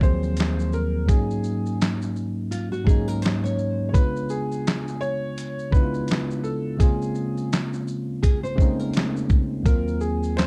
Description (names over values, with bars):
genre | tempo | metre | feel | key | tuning
lo-fi hip hop | 84 BPM | 4/4 | swing 59% on 16ths | unclear | A4 = 440 Hz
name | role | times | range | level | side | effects
felt-muted upright piano | melody | 0.0-10.5 s | Ab4 to Db5 | -33 LUFS | equal | none
bell-like tine electric piano | accompaniment | 0.0-10.5 s | Eb2 to Ab4 | -27 LUFS | equal | none
dusty soul sampler-style drum kit | drums | 0.0-10.5 s | handclaps, hi-hat, kick drum, shaker, snare drum | -23 LUFS | equal | none
nylon-string guitar | second line | 2.5-3.9, 8.2-9.6 s | F4 to Db5 | -34 LUFS | equal | none
finger snap | percussion | 10.4-10.5 s | none | -44 LUFS | equal | none
room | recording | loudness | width
light reverb | dark, warm production | -24 LUFS | mono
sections
0.0-10.5 A section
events
none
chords
0.0 Ebm69; 1.1 Ab9sus4; 3.9 Db7b9; 6.8 Dbmaj13; 9.7 Ebm69